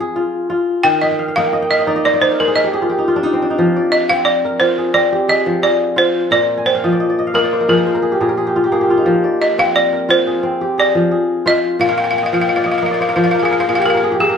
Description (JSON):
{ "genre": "west african traditional", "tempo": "88 BPM", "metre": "4/4", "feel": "swing 53% on 16ths", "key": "F dorian", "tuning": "A4 = 440 Hz", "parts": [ { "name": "balafon", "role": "melody", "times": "0.0-14.4 s", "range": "Ab4 to G5", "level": "-15 LUFS", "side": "equal", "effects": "none" }, { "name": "kora", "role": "arpeggios", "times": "0.0-14.4 s", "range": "Bb2 to Ab5", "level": "-16 LUFS", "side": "equal", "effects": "none" } ], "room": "moderate recital hall reverb, RT60 1.3 s", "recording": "none", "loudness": "-13 LUFS", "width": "side -7 dB against mid", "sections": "0.0-3.6 A section; 3.6-14.4 B section", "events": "balafon solo 0.0-3.6; kora fill 1.0-3.6, 6.6-9.1, 11.9-14.4", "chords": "0.0 Fm; 0.8 Eb; 3.6 Fm; 6.3 Bb5; 9.1 Fm; 11.8 Bb5" }